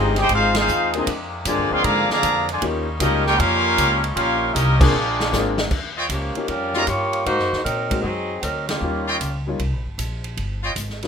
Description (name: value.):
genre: jazz, big band swing.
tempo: 155 BPM.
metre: 4/4.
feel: swing 66% on 8ths.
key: Eb major, Eb mixolydian from 5.7 s.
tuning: A4 = 440 Hz.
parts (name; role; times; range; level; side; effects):
clear trumpet section; melody; 0.0-5.6 s; C4 to C6; -20 LUFS; equal; none.
clear trombone section; second line; 0.0-5.6 s; D3 to G4; -25 LUFS; equal; none.
warm concert grand piano; accompaniment; 0.0-11.1 s; G3 to Ab4; -26 LUFS; left 4 dB; none.
muted trombone section; sustained chords; 0.0-5.7 s; C3 to Eb4; -30 LUFS; left 3 dB; none.
upright bass; bass; 0.0-11.1 s; G1 to Bb2; -25 LUFS; equal; none.
swinging big-band drum kit; drums; 0.2-11.1 s; crash cymbal, hi-hat, kick drum, ride cymbal, snare drum; -26 LUFS; equal; none.
bright trumpet section; stabs; 6.0-10.7 s; F4 to Bb5; -24 LUFS; equal; none.
dark saxophone section; melody; 6.1-9.4 s; F3 to Db5; -23 LUFS; equal; none.
room: moderate club reverb, RT60 0.6 s.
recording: minimal, uncompressed stereo recording.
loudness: -18 LUFS.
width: side -7 dB against mid.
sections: 0.0-5.7 A section; 5.7-11.1 B section.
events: band accent 0.5, 4.7, 8.6; drum fill 4.9-5.7.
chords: 0.0 Fm7; 1.1 Bb9; 2.6 Eb9; 4.9 Bb9; 5.7 Eb9; 7.3 Ab9; 8.8 Eb9.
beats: 0.30 0.69 | 1.08 1.46 1.85 2.23 | 2.62 3.01 3.39 3.78 | 4.17 4.55 4.94 5.33 | 5.71 6.10 6.49 6.88 | 7.26 7.65 8.04 8.43 | 8.82 9.21 9.60 9.98 | 10.37 10.76.